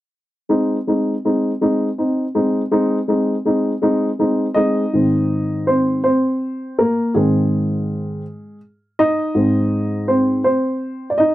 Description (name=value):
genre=pop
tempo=54 BPM (dotted quarters)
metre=6/8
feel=straight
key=Ab major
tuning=A4 = 440 Hz
part: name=dark upright piano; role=accompaniment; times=0.5-11.3 s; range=Ab2 to Eb5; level=-16 LUFS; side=equal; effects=none
room=light reverb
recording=dry, close 1970s-style studio recording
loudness=-16 LUFS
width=side -15 dB against mid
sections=0.5-4.9 A section; 4.9-11.3 B section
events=upright piano solo 4.9-11.3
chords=0.5 Ab